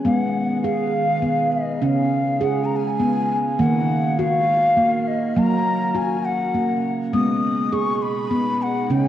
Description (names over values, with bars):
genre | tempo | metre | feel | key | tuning
world meditative, meditative tuned percussion | 68 BPM (dotted quarters) | 6/8 | straight | G# dorian | A4 = 439 Hz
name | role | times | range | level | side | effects
evolving wavetable pad | sustained chords | 0.0-9.1 s | B2 to G#4 | -29 LUFS | equal | chorus, built-in reverb, cassette tape
handpan | arpeggios | 0.0-9.1 s | C#3 to G#4 | -21 LUFS | right 1 dB | cassette tape, tape echo
breathy bansuri | melody | 0.1-9.1 s | D#5 to D#6 | -22 LUFS | left 2 dB | cassette tape, shimmer reverb, tape echo
room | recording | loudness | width
wet spring reverb, RT60 2.4 s | home recording on cassette, nothing above 11.0 kHz | -18 LUFS | side -11 dB against mid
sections
0.0-9.1 A section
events
none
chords
0.0 G#m; 1.8 C#; 3.6 D#m; 5.4 F#; 7.1 G#m